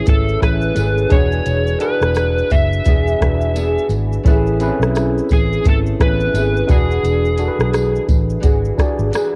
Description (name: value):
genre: indie pop, bedroom pop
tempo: 86 BPM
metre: 4/4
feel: swing 60% on 16ths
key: A major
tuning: A4 = 440 Hz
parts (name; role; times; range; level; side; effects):
- overdriven slide guitar; melody; 0.0-8.1 s; G#4 to E5; -24 LUFS; equal; analog chorus, analog delay
- nylon-string guitar; accompaniment; 0.0-9.4 s; E3 to G#4; -26 LUFS; equal; ensemble chorus, warbly pitch drift, cassette tape
- tine electric piano; accompaniment; 0.0-9.4 s; B3 to D5; -25 LUFS; equal; overdrive, cassette tape
- vintage muted fingered electric bass; bass; 0.1-9.1 s; E1 to B1; -21 LUFS; equal; none
- soft vintage rhythm box; drums; 0.1-9.3 s; hi-hat, kick drum, rim click, shaker; -18 LUFS; equal; cassette tape
- tambourine; percussion; 0.1-9.3 s; none; -43 LUFS; equal; none
room: digital ambience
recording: home recording on cassette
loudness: -16 LUFS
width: mono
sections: 0.0-9.4 A section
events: none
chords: 0.0 Amaj7; 1.1 E7; 4.3 Amaj7; 6.7 E9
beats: 0.08 0.78 | 1.47 2.17 2.86 3.56 | 4.25 4.95 5.64 6.34 | 7.04 7.73 8.43 9.12